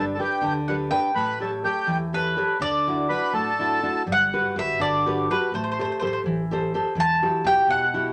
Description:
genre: italian folk, Italian serenade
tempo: 83 BPM (dotted quarters)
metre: 6/8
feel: straight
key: D major, G major from 4.1 s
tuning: A4 = 440 Hz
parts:
  - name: accordion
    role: second line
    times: 0.0-4.0 s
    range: G4 to B4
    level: -27 LUFS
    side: equal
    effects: none
  - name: nylon-string guitar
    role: accompaniment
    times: 0.0-8.1 s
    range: B2 to C#5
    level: -28 LUFS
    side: equal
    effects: none
  - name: upright bass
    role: bass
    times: 0.0-8.1 s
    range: E1 to E2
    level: -40 LUFS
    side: equal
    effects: none
  - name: mandolin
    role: melody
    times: 0.7-8.1 s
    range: B4 to A5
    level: -25 LUFS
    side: equal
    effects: none
room: moderate club reverb, RT60 0.7 s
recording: none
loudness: -23 LUFS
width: mono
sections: 0.0-4.1 A section; 4.1-8.1 B section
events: none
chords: 0.0 G; 1.2 A7; 2.6 Dadd9; 4.1 Gmaj7; 5.5 Am7; 7.0 Emadd9

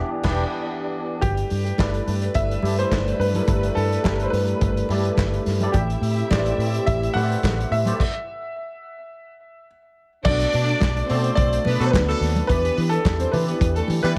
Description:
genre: disco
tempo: 106 BPM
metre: 4/4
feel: straight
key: unclear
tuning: A4 = 442 Hz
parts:
  - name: warm concert grand piano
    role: melody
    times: 0.0-13.8 s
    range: G4 to F#5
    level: -29 LUFS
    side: equal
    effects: plate reverb, tape echo
  - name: barky tine electric piano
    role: accompaniment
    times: 0.0-14.2 s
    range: E3 to E5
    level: -31 LUFS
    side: equal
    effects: ensemble chorus, plate reverb
  - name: vintage muted fingered electric bass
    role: bass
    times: 0.2-14.1 s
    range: E1 to E3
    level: -26 LUFS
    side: equal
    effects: none
  - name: vintage drum kit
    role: drums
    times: 0.2-14.2 s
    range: crash cymbal, handclaps, hi-hat, kick drum, snare drum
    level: -28 LUFS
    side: equal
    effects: none
  - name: dark studio string section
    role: second line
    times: 1.2-14.2 s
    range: A3 to E5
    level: -31 LUFS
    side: equal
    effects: plate reverb
  - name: mellow French horn section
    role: sustained chords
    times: 1.2-14.2 s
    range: E3 to D5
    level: -34 LUFS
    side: equal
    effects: plate reverb
  - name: congas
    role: percussion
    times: 1.2-14.2 s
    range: none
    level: -33 LUFS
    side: equal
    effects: none
  - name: clear horn section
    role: stabs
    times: 11.8-14.1 s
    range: F#3 to B4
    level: -30 LUFS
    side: equal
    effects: plate reverb
room: light reverb, studio reverb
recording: none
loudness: -22 LUFS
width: mono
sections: 0.0-1.2 A section; 1.2-10.2 B section; 10.2-14.2 C section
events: band accent 0.0-1.2; stop 8.0-10.2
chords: 0.0 Em7; 1.2 G69; 5.7 Am11; 10.2 Bm7; 12.5 Em7

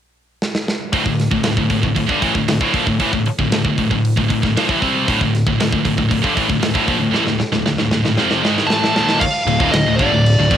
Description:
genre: heavy metal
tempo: 116 BPM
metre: 4/4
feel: straight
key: D phrygian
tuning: A4 = 440 Hz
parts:
  - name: tight metal drum kit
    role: drums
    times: 0.4-10.6 s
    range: crash cymbal, hi-hat, kick drum, snare drum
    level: -21 LUFS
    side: right 1 dB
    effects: cassette tape
  - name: scooped high-gain guitar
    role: riff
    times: 0.9-10.6 s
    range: D2 to C4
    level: -19 LUFS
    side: left 6 dB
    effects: distortion, cassette tape
  - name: scooped high-gain guitar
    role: riff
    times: 0.9-10.6 s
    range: D2 to C4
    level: -18 LUFS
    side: right 7 dB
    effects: distortion, cassette tape
  - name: high-gain lead guitar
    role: melody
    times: 8.7-10.6 s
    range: D5 to A5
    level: -18 LUFS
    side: equal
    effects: distortion
  - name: fuzz picked electric bass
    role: bass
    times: 9.5-10.6 s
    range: D1 to G#1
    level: -20 LUFS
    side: equal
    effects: overdrive
room: little or no reverb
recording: home recording on cassette, faint mains hum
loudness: -14 LUFS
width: side -10 dB against mid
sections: 0.9-9.2 A section; 9.2-10.6 B section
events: drum fill 0.4-0.9, 7.2-9.2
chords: 0.0 N.C.; 0.9 Dm

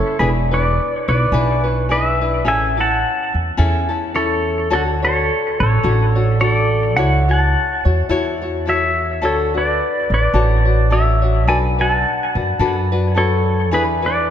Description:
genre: Hawaiian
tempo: 107 BPM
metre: 4/4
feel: swing 57% on 8ths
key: A major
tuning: A4 = 440 Hz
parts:
  - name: pedal steel guitar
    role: melody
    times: 0.0-14.3 s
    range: F#4 to A5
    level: -18 LUFS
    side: equal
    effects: digital delay
  - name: tenor ukulele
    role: accompaniment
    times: 0.0-14.3 s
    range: C#4 to C#5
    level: -22 LUFS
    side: left 4 dB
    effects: none
  - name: upright bass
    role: bass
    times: 0.2-14.3 s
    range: E1 to F#2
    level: -18 LUFS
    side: right 1 dB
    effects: none
room: moderate concert hall reverb, RT60 1.9 s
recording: none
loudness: -14 LUFS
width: side -9 dB against mid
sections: 0.2-14.3 A section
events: none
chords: 0.2 E7; 2.5 Amaj7; 4.7 Dmaj7; 7.0 A6/C#; 9.2 Dmaj7; 11.5 Bm7; 13.7 E7

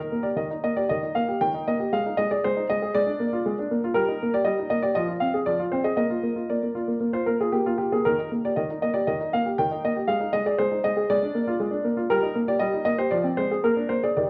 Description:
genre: classical-period piano sonatina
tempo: 118 BPM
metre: 4/4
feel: straight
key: Eb major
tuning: A4 = 440 Hz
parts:
  - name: clear baby grand piano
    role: solo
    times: 0.0-14.3 s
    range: Eb3 to G5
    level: -25 LUFS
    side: equal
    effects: none
room: moderate recital hall reverb, RT60 1.4 s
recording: worn, warbling old tape, cassette tape, warbly pitch drift, nothing above 10.4 kHz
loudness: -25 LUFS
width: mono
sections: 0.0-14.3 A section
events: none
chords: 0.0 Eb; 1.9 Ab5; 2.9 Bb7/Ab; 3.9 Eb/G; 5.0 Fm; 6.0 Bb; 8.0 Eb; 10.1 Ab5; 11.1 Bb7/Ab; 12.1 Eb/G; 13.1 Fm; 13.6 Bb7

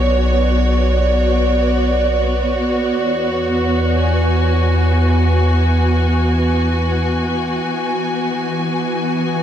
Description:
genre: ambient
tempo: free time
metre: none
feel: none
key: E mixolydian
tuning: A4 = 440 Hz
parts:
  - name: warm studio string section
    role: sustained chords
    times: 0.0-9.4 s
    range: E3 to G#5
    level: -17 LUFS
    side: right 1 dB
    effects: none
  - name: round analog bass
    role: bass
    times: 0.0-7.6 s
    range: B1 to E2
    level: -17 LUFS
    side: equal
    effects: none
  - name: bowed-like drone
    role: drone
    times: 8.0-9.4 s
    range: E3 to B3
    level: -23 LUFS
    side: left 2 dB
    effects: built-in reverb
room: moderate huge ambient reverb, RT60 8.0 s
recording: dreamy mix soaked in reverb, cassette tape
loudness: -14 LUFS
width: side -10 dB against mid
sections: 0.0-7.6 A section; 7.6-9.4 B section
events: none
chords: 0.0 Bm; 3.0 E7; 7.6 Eadd9

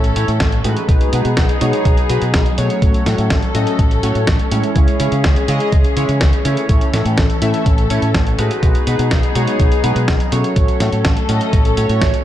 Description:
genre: italo disco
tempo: 124 BPM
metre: 4/4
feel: straight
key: unclear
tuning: A4 = 439 Hz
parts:
  - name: dark chamber string section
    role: sustained chords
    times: 0.0-12.2 s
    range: E3 to A4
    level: -21 LUFS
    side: left 2 dB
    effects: none
  - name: fingered electric bass with an envelope filter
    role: bass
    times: 0.0-12.1 s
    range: A1 to C#3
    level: -18 LUFS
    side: equal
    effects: digital delay
  - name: dusty soul sampler-style drum kit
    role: drums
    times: 0.0-12.2 s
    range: hi-hat, snare drum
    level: -23 LUFS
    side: equal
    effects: none
  - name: chorused polysynth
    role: stabs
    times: 0.2-12.1 s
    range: G#3 to E5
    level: -21 LUFS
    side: right 1 dB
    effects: cassette tape, digital delay
  - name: electronic kick drum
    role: drums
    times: 0.4-12.1 s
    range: none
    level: -15 LUFS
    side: equal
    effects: none
room: light reverb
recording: dark, warm production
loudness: -13 LUFS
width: side -12 dB against mid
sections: 0.0-12.2 A section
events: none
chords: 0.0 A; 0.9 B6; 2.8 F#m/A; 4.8 C#m; 6.7 A; 8.6 B6; 10.6 F#m/A

